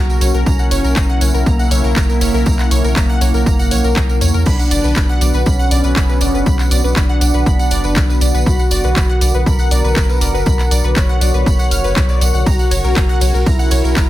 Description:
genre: melodic techno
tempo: 120 BPM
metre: 4/4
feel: straight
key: B harmonic minor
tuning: A4 = 439 Hz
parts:
  - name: expressive portamento lead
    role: melody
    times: 0.0-14.1 s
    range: A#3 to C#5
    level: -21 LUFS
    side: equal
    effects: analog chorus, sidechain pumping, digital delay
  - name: sweeping resonant pad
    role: sustained chords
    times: 0.0-14.1 s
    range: C#3 to A#4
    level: -26 LUFS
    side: left 1 dB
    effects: chorus, sidechain pumping
  - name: analog pluck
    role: arpeggios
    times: 0.0-14.1 s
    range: A#4 to E#6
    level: -23 LUFS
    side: left 1 dB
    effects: chorus, sidechain pumping, dub echo
  - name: round analog bass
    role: bass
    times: 0.0-14.1 s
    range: F#1 to E2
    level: -17 LUFS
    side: equal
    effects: sidechain pumping
  - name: warbly tape-like pad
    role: texture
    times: 0.1-14.1 s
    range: B3 to F#5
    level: -27 LUFS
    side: right 2 dB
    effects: chorus, built-in reverb, sidechain pumping
  - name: tambourine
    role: percussion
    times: 0.1-14.1 s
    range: none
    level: -27 LUFS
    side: right 4 dB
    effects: none
  - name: house drum kit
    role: drums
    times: 0.2-14.1 s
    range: crash cymbal, handclaps, hi-hat, ride cymbal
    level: -23 LUFS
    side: left 1 dB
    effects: none
  - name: electronic kick drum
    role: drums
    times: 0.5-14.1 s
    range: none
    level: -15 LUFS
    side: equal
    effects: none
room: digital ambience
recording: dense, heavily limited modern master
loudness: -12 LUFS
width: side -14 dB against mid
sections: 0.0-14.1 A section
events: none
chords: 0.0 F#; 4.5 Bm; 12.5 F#

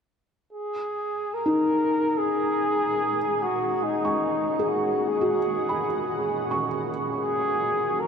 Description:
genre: ambient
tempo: 72 BPM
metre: 4/4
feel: straight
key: G# minor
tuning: A4 = 440 Hz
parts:
  - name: mellow flugelhorn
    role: melody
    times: 0.5-8.1 s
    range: D#4 to A#4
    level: -25 LUFS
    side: equal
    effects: shimmer reverb, diffuse ambient delay
  - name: shimmering ambient pad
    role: sustained chords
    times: 2.1-8.1 s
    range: A#2 to F#4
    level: -33 LUFS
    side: right 2 dB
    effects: chorus, built-in reverb, shimmer reverb
  - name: felt-muted upright piano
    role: arpeggios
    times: 1.5-8.1 s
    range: D#4 to C#6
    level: -27 LUFS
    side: left 1 dB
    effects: shimmer reverb, diffuse ambient delay
room: wet huge ambient reverb, RT60 9.5 s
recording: none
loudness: -23 LUFS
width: side -6 dB against mid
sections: 0.5-8.1 A section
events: fade-in on ambient pad 0.5-8.1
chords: 0.5 G#m9

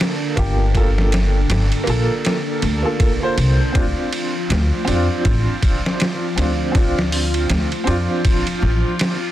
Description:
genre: trip hop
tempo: 80 BPM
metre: 4/4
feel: swing 58% on 16ths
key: G minor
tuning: A4 = 440 Hz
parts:
  - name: warm upright piano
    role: accompaniment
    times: 0.0-9.3 s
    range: Bb3 to C5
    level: -23 LUFS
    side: right 1 dB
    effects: tremolo, tape echo
  - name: string machine, cellos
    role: sustained chords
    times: 0.0-9.3 s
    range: D4 to F4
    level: -26 LUFS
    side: equal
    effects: ensemble chorus
  - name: trip hop sampler-style drum kit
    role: drums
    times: 0.0-9.2 s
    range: hi-hat, kick drum, ride cymbal, snare drum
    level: -21 LUFS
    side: equal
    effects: none
  - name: upright bass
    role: bass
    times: 0.4-8.8 s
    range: G1 to F2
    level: -18 LUFS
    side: equal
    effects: none
room: digital ambience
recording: dense, heavily limited modern master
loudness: -16 LUFS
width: side -13 dB against mid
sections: 0.0-9.3 A section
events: none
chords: 0.0 Gm9; 3.7 Dm7

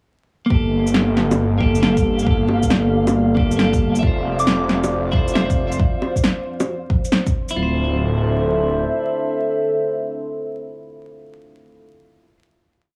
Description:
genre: future garage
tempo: 136 BPM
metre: 4/4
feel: swing 66% on 16ths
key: D minor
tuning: A4 = 440 Hz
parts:
  - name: clean electric guitar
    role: accompaniment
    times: 0.5-12.4 s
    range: Bb3 to E5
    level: -25 LUFS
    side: equal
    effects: sidechain pumping, tape echo
  - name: dark analog pad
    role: sustained chords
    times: 1.3-11.9 s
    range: F3 to E5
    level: -26 LUFS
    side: equal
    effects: chorus, phaser, sidechain pumping
  - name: swelling detuned saw bass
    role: bass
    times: 0.5-8.8 s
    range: D1 to G1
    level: -23 LUFS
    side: equal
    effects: sidechain pumping
  - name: electronic kick drum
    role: drums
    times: 0.5-7.3 s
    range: none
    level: -22 LUFS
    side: equal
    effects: overdrive
  - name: flickering grainy texture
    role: texture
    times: 0.9-5.8 s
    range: F5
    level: -35 LUFS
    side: equal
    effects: built-in reverb
  - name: electronic shaker, snare drum and bongos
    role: drums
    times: 0.9-7.5 s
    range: none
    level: -23 LUFS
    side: equal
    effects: overdrive
  - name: soft synth bell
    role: melody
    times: 4.4-4.6 s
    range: D6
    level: -27 LUFS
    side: equal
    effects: chorus, tape echo
room: moderate spring reverb, RT60 1.3 s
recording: echo-heavy mix, vinyl crackle, small room ambience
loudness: -19 LUFS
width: mono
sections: 0.5-7.6 groove; 7.6-11.1 final chord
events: none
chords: 0.5 Gmadd9; 4.0 Dm7/F; 7.6 Dm7

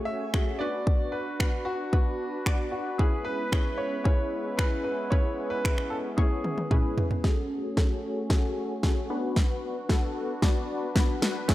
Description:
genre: dance-pop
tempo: 113 BPM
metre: 4/4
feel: straight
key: unclear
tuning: A4 = 441 Hz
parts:
  - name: funky polysynth comp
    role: accompaniment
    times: 0.0-11.5 s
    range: A3 to D5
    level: -33 LUFS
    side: left 2 dB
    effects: chorus, sidechain pumping, low-pass filter
  - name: sweeping resonant pad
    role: sustained chords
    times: 0.0-11.5 s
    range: G#3 to G#5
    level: -36 LUFS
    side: equal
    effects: chorus, sidechain pumping, low-pass filter
  - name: clear concert grand piano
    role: melody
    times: 0.1-6.9 s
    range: F#4 to E5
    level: -33 LUFS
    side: equal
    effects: tape echo
  - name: pop drum kit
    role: drums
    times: 0.3-11.5 s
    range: finger snaps, hi-hat, kick drum, snare drum, toms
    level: -25 LUFS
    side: equal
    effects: none
  - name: direct-recorded clean electric guitar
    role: riff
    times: 11.5 s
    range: B3 to C#5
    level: -30 LUFS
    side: right 3 dB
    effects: wide subtle chorus, low-pass filter
room: digital ambience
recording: dry, gritty hardware recording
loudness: -25 LUFS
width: side -15 dB against mid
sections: 0.0-7.2 A section; 7.2-11.5 B section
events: drum fill 6.2-7.2, 7.2-11.5; build-up 7.2-11.5; filter sweep 7.2-11.5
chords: 0.0 F#madd9; 0.6 Bm; 3.0 E6; 7.2 F#madd9; 9.1 Bm

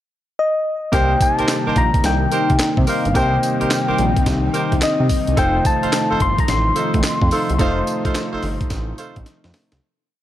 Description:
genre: R&B, new jack swing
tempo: 108 BPM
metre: 4/4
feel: swing 65% on 16ths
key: C dorian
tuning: A4 = 440 Hz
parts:
  - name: soft struck synth lead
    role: melody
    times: 0.4-9.3 s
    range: Eb5 to C6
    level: -21 LUFS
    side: left 3 dB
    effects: chorus
  - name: clear grand piano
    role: accompaniment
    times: 0.9-9.8 s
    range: A3 to C5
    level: -26 LUFS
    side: equal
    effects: none
  - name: chorused pulse-width pad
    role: sustained chords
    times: 0.9-9.8 s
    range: C3 to Eb4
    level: -24 LUFS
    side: equal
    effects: none
  - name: warm horn section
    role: stabs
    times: 0.9-9.2 s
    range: Eb4 to C5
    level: -25 LUFS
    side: right 3 dB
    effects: none
  - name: fat analog bass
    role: bass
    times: 0.9-9.8 s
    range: F1 to C3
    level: -21 LUFS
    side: equal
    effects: none
  - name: breakbeat sampler-style drum kit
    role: drums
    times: 0.9-9.8 s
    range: handclaps, hi-hat, kick drum, snare drum, tambourine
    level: -21 LUFS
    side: equal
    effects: none
room: light reverb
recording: none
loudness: -16 LUFS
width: side -12 dB against mid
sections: 0.0-0.9 pickup bar; 0.9-9.8 chorus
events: fade-out 7.6-9.8; drum fill 9.3-9.8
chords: 0.0 N.C.; 0.9 Cm7; 5.4 F7

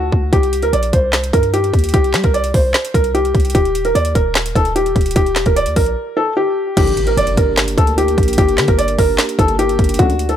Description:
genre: hip hop, trap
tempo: 149 BPM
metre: 4/4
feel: half-time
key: G harmonic minor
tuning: A4 = 438 Hz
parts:
  - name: felt-muted upright piano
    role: melody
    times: 0.0-10.4 s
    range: F#4 to D5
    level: -16 LUFS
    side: equal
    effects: none
  - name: hard-hitting 808-style bass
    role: bass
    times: 0.0-10.4 s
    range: Eb1 to G3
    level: -20 LUFS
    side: equal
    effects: none
  - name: trap drum kit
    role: drums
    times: 0.1-10.4 s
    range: crash cymbal, handclaps, hi-hat, kick drum, snare drum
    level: -16 LUFS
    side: equal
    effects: none
  - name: glass harmonica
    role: sustained chords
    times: 6.8-10.4 s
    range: Bb3 to D5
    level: -24 LUFS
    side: right 1 dB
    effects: none
  - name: dark brass ensemble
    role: stabs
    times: 6.8-6.9, 10.0-10.1 s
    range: A1 to D3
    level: -23 LUFS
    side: left 4 dB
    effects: none
  - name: impact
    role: sound effects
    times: 6.8-8.4 s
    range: none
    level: -27 LUFS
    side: equal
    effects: none
room: little or no reverb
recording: dry, gritty hardware recording, transformer saturation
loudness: -13 LUFS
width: side -10 dB against mid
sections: 0.0-6.8 A section; 6.8-10.4 B section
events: break 0.0-0.3, 6.0-6.8; impact 6.8-8.4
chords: 0.3 C5; 3.5 Eb; 6.8 Gm

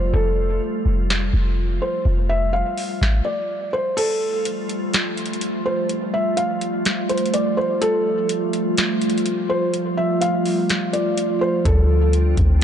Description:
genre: hip hop, atmospheric cloud-rap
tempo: 125 BPM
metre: 4/4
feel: half-time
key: unclear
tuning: A4 = 440 Hz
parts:
  - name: felt-muted upright piano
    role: melody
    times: 0.0-12.1 s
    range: A4 to F5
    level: -23 LUFS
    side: equal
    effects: low-pass filter, tape echo
  - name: glassy FM pad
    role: sustained chords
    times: 0.0-12.6 s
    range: F3 to F4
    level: -23 LUFS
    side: right 1 dB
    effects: ensemble chorus, built-in reverb, sidechain pumping, low-pass filter
  - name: clean 808-style bass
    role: bass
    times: 0.0-2.6, 11.7-12.6 s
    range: F1 to D2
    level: -18 LUFS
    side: equal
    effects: none
  - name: booming analog drum machine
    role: drums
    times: 1.1-12.6 s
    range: crash cymbal, hi-hat, kick drum, snare drum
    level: -23 LUFS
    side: equal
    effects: none
room: light reverb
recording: dark, warm production, nothing above 10.7 kHz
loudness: -18 LUFS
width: side -9 dB against mid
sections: 0.0-4.0 A section; 4.0-12.6 B section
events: kick muted 4.0-11.7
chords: 0.0 Fadd9; 11.7 Dm7

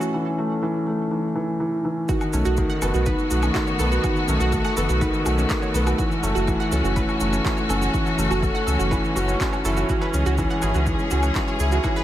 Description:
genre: piano and strings electronica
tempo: 123 BPM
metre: 4/4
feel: straight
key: F# dorian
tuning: A4 = 440 Hz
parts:
  - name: clear studio string section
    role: sustained chords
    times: 0.0-12.0 s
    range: D#3 to G#4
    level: -26 LUFS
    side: left 1 dB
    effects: sidechain pumping
  - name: analog pluck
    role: arpeggios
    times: 0.0-12.0 s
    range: C#4 to F#5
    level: -29 LUFS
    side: right 6 dB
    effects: chorus, sidechain pumping, tape echo
  - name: dark upright piano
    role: riff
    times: 0.0-12.0 s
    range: D#3 to A4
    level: -24 LUFS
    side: equal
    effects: tape echo
  - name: electronic shaker, woodblock and handclaps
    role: drums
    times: 0.0-12.0 s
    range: none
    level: -32 LUFS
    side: left 1 dB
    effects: none
  - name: electronic kick drum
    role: drums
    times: 2.1-11.9 s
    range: none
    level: -26 LUFS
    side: equal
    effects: overdrive
  - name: round analog bass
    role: bass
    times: 2.3-11.8 s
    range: F#1 to C#2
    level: -23 LUFS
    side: equal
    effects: sidechain pumping
room: moderate recital hall reverb, RT60 1.5 s, digital ambience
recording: none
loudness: -20 LUFS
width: side -12 dB against mid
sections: 0.0-2.1 A section; 2.1-12.0 B section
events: build-up 0.0-2.1; drop 2.1-12.0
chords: 0.0 F#m7 (rootless); 2.1 B7; 6.0 F#m7; 9.9 C#m

